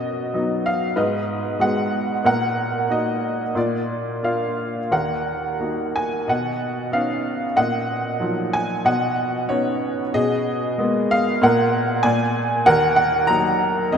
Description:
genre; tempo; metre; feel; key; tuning
classical, lyrical solo piano; 93 BPM; 4/4; rubato; Eb minor; A4 = 440 Hz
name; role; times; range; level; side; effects
clear upright piano; solo; 0.0-14.0 s; Eb2 to Bb5; -19 LUFS; equal; none
room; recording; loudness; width
wet cathedral reverb, RT60 4.6 s; in a vast, echoing space; -19 LUFS; side -7 dB against mid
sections
0.0-14.0 A section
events
none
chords
0.0 B; 1.0 Abm7; 2.2 Ebm/Bb; 3.6 Bb; 4.9 Ebm; 6.3 Badd9; 7.6 Ebmadd9/Bb; 8.9 Badd9; 10.1 Abmadd9/Cb; 11.4 N.C.; 12.0 Bb7; 12.7 Ebm

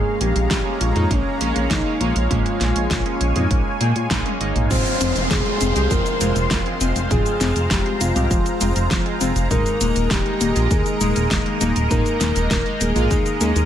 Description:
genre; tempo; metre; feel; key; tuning
synthwave; 100 BPM; 4/4; straight; F minor; A4 = 440 Hz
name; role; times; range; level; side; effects
soft octave-layered synth lead; melody; 0.0-13.7 s; Db4 to C5; -26 LUFS; left 2 dB; chorus, ping-pong delay
lush unison pad; sustained chords; 0.0-13.7 s; Ab3 to C6; -26 LUFS; equal; chorus, phaser, sidechain pumping
chorused polysynth; stabs; 0.0-13.5 s; Ab3 to G4; -26 LUFS; right 3 dB; none
chorused synth bass; bass; 0.0-13.7 s; Eb1 to Bb2; -22 LUFS; equal; sidechain pumping
pop drum kit; drums; 0.2-13.7 s; cabasa, crash cymbal, hi-hat, snare drum, toms; -25 LUFS; equal; none
electronic kick drum; drums; 0.5-13.2 s; none; -24 LUFS; equal; none
warbly dusty pluck; arpeggios; 4.7-13.6 s; Eb3 to C4; -27 LUFS; left 4 dB; chorus, ping-pong delay
downlifter; sound effects; 4.7-9.5 s; none; -28 LUFS; equal; none
room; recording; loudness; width
digital ambience; none; -17 LUFS; side -10 dB against mid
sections
0.0-4.7 A section; 4.7-13.7 B section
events
drum fill 4.1-4.7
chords
0.0 Bbm7; 4.7 Fm; 9.5 Ebsus4

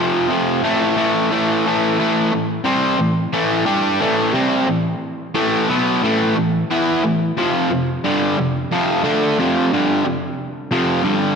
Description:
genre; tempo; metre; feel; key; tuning
rock; 89 BPM; 4/4; straight; A minor; A4 = 441 Hz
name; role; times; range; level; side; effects
overdriven semi-hollow guitar; solo; 0.0-11.4 s; F2 to G4; -16 LUFS; equal; slapback echo
room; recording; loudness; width
wet lush hall reverb, RT60 2.2 s; big arena sound; -16 LUFS; side -6 dB against mid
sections
0.0-2.0 A section; 2.0-11.4 B section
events
none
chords
0.0 F5; 0.6 A5; 2.0 Am; 7.4 F5

